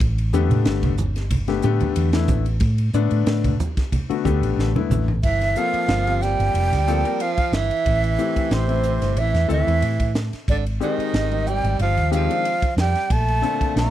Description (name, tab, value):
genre	electric jazz fusion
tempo	92 BPM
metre	4/4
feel	swing 54% on 16ths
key	unclear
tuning	A4 = 439 Hz
part	hollow-body short-scale fingered electric bass	bass	0.0-13.9 s	F1 to A2	-21 LUFS	equal	none
part	crisp fusion drum kit	drums	0.0-13.9 s	crash cymbal, hi-hat, kick drum, ride cymbal, snare drum, toms	-26 LUFS	equal	none
part	warm grand piano	accompaniment	0.3-13.9 s	Bb2 to Bb4	-25 LUFS	left 10 dB	none
part	congas	percussion	0.5-5.1 s	none	-25 LUFS	right 2 dB	none
part	breathy mellow silver concert flute	melody	5.2-13.9 s	C5 to Bb5	-23 LUFS	right 1 dB	slapback echo
part	bright tenor saxophone	second line	5.2-13.9 s	C3 to Bb3	-27 LUFS	right 11 dB	none
room	studio ambience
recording	none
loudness	-18 LUFS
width	side -12 dB against mid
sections	0.0-5.2 A section; 5.2-13.9 B section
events	drum fill 4.6-5.2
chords	0.0 A9sus4; 5.2 Gm11; 7.9 Am7; 10.5 Abmaj7; 13.1 Bbmaj9